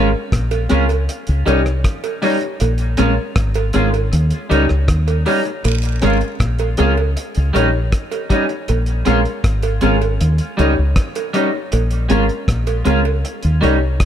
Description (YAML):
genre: roots reggae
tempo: 79 BPM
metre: 4/4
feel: straight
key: Bb dorian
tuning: A4 = 439 Hz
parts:
  - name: electric guitar at the edge of break-up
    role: accompaniment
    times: 0.0-13.8 s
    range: G3 to F4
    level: -20 LUFS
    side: right 3 dB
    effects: wide subtle chorus, tape echo
  - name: dark upright piano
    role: stabs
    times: 0.0-13.8 s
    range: Db4 to Db5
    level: -22 LUFS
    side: left 4 dB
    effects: none
  - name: deep dub fingered electric bass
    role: bass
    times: 0.0-14.0 s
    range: Ab1 to Eb2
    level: -16 LUFS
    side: equal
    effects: none
  - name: cloth-damped thuddy drum kit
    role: drums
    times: 0.3-14.1 s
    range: hi-hat, kick drum, rim click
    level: -20 LUFS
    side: equal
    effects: tape echo
  - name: cowbell and jawbone-type rattle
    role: percussion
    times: 0.5-13.8 s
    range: none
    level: -27 LUFS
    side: right 9 dB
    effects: none
room: light reverb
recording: none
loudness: -14 LUFS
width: side -10 dB against mid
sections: 0.0-14.1 A section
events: none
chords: 0.0 Bbm7; 1.1 Eb7; 2.6 Bbm7; 4.1 Eb7; 5.6 Bbm7; 7.2 Eb7; 8.7 Bbm7; 10.2 Eb7; 11.7 Bbm7; 13.2 Eb7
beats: 0.32 1.08 1.84 | 2.60 3.36 4.12 4.88 | 5.64 6.40 7.16 7.92 | 8.68 9.44 10.20 10.96 | 11.72 12.48 13.24 14.00